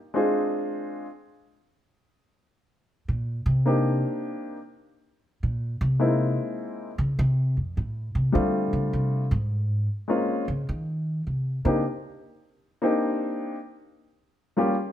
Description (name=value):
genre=jazz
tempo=103 BPM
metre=4/4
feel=swing 68% on 8ths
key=C minor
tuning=A4 = 443 Hz
part: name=warm baby grand piano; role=melody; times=0.1-14.7 s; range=G3 to Ab4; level=-25 LUFS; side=left 1 dB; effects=none
part: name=upright bass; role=bass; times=3.1-11.8 s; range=F2 to Eb3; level=-24 LUFS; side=equal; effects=none
room=moderate large studio reverb, RT60 1.2 s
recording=none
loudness=-24 LUFS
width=side -11 dB against mid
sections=0.0-2.5 A section; 2.5-14.9 A section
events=upright bass solo 0.0-14.9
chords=0.1 Dm7b5; 1.3 N.C.; 2.5 Cm9; 6.0 C7alt; 7.2 F6; 9.5 Bbm9; 10.7 Eb7(no3); 11.8 Bb69; 14.2 Gm7b5